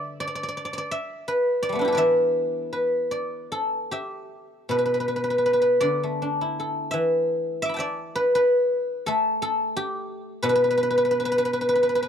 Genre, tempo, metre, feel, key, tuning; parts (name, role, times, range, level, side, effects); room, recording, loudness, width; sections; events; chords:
chinese traditional, Chinese solo plucked strings; 70-90 BPM; 4/4; rubato; E yu mode; A4 = 438 Hz
guzheng; solo; 0.0-12.1 s; B2 to D6; -22 LUFS; equal
small room ambience; dry, close 1970s-style studio recording; -21 LUFS; side -8 dB against mid
0.0-4.7 A section; 4.7-12.1 B section